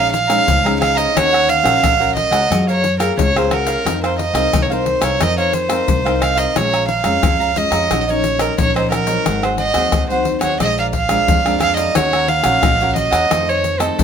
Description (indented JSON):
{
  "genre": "samba and choro",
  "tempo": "89 BPM",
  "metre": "4/4",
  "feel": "straight",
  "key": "Bb minor",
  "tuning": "A4 = 438 Hz",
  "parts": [
    { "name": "warm violin", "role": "melody", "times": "0.0-14.0 s", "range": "A4 to F5", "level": "-17 LUFS", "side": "right 3 dB", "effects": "plate reverb" },
    { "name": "cavaquinho", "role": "accompaniment", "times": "0.0-14.0 s", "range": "Eb4 to Bb5", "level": "-23 LUFS", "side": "right 4 dB", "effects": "none" },
    { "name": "nylon-string guitar", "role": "accompaniment", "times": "0.0-14.0 s", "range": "F2 to Bb4", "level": "-23 LUFS", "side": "left 4 dB", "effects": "none" },
    { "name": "upright bass", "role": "bass", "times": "0.0-14.0 s", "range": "Ab1 to Gb2", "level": "-23 LUFS", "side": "equal", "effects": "none" },
    { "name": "tube shaker, pandeiro, tamborim and surdo", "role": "percussion", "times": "0.1-14.0 s", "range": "none", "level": "-20 LUFS", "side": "left 3 dB", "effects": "none" }
  ],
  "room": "moderate studio reverb, RT60 0.6 s",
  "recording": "none",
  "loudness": "-13 LUFS",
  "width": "side -7 dB against mid",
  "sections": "0.0-14.0 A section",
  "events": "none",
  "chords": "0.0 Bbm7; 1.2 Ebm7; 2.5 Gbmaj9; 3.9 F7sus4; 6.6 Bbm7; 7.9 Ebm7/Bb; 9.3 Ab7; 10.6 Bb7; 12.0 Ebm7; 13.3 F7"
}